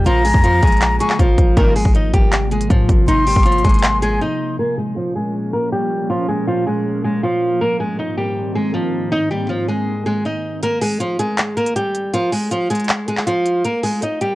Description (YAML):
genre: hip hop, trap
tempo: 159 BPM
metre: 4/4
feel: half-time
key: Bb dorian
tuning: A4 = 443 Hz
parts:
  - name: flamenco guitar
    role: melody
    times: 0.0-14.3 s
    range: F3 to Eb5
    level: -19 LUFS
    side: equal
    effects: low-pass filter
  - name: glassy FM pad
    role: sustained chords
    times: 0.0-10.6 s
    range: Ab2 to Db4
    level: -25 LUFS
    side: equal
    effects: ensemble chorus, built-in reverb, low-pass filter
  - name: clean 808-style bass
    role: bass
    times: 0.0-4.2 s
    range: Ab1 to Ab2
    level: -18 LUFS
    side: equal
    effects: transformer saturation
  - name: breathy concert flute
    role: second line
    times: 0.1-4.2 s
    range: Ab5 to Db6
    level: -20 LUFS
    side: left 2 dB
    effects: analog delay
  - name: trap drum kit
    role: drums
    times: 0.1-4.1, 10.6-14.3 s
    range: handclaps, hi-hat, kick drum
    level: -16 LUFS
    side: equal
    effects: none
  - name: sync-sweep polysynth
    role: stabs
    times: 1.6-1.7 s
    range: C2 to Eb3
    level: -27 LUFS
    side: right 1 dB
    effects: chorus, analog delay
room: light reverb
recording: dry, gritty hardware recording, cassette tape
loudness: -15 LUFS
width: side -17 dB against mid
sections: 0.0-4.6 A section; 4.6-10.6 B section; 10.6-14.3 C section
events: break 4.2-4.6; filter sweep 4.6-10.6; kick muted 10.6-14.3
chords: 0.0 Bbm7; 1.6 Abadd9; 4.6 Bbm7; 7.6 Abadd9; 10.6 Bb5; 13.6 Absus2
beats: | 0.06 0.44 0.81 1.19 | 1.57 1.95 2.32 2.70 | 3.08 3.46 3.83 4.21 | 4.59 4.97 5.34 5.72 | 6.10 6.47 6.85 7.23 | 7.61 7.99 8.36 8.74 | 9.12 9.49 9.87 10.25 | 10.63 11.00 11.38 11.76 | 12.14 12.51 12.89 13.27 | 13.64 14.02